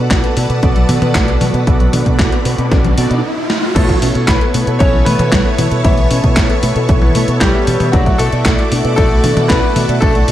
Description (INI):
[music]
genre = italo disco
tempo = 115 BPM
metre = 4/4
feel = straight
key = unclear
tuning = A4 = 440 Hz
[part]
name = string machine, full ensemble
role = sustained chords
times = 0.0-10.3 s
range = A4 to E6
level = -23 LUFS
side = equal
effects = ensemble chorus
[part]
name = soft round pluck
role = arpeggios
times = 0.0-10.3 s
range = E3 to D5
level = -22 LUFS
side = left 2 dB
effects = wide subtle chorus, digital delay
[part]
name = analog synth brass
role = stabs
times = 0.0-10.3 s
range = A3 to D5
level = -20 LUFS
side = right 2 dB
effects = chorus
[part]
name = fingered electric bass with an envelope filter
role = bass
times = 0.0-10.3 s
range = B1 to B2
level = -16 LUFS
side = equal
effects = none
[part]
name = riser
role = sound effects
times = 1.4-3.8 s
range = none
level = -23 LUFS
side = right 2 dB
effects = none
[part]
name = electronic kick drum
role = drums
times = 0.1-10.1 s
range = none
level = -14 LUFS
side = equal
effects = small room ambience
[part]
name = gated 80s digital drum machine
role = drums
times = 0.1-10.3 s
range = crash cymbal, handclaps, hi-hat, snare drum, toms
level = -19 LUFS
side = equal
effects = gated reverb, gated reverb snare, small room ambience
[part]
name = bright grand piano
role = melody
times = 3.8-10.3 s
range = E3 to C#5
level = -19 LUFS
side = left 2 dB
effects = tape echo
[sound]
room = light reverb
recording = dark, warm production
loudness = -10 LUFS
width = side -12 dB against mid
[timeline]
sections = 0.0-3.8 A section; 3.8-10.3 B section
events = riser 1.4-3.8; stop 3.2-3.8; drum fill 3.5; band accent 3.5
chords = 0.0 Bm7; 3.8 Aadd9/B; 7.9 Dadd9/B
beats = 0.11 0.63 1.15 | 1.67 2.19 2.72 3.24 | 3.76 4.28 4.80 5.33 | 5.85 6.37 6.89 7.41 | 7.93 8.46 8.98 9.50 | 10.02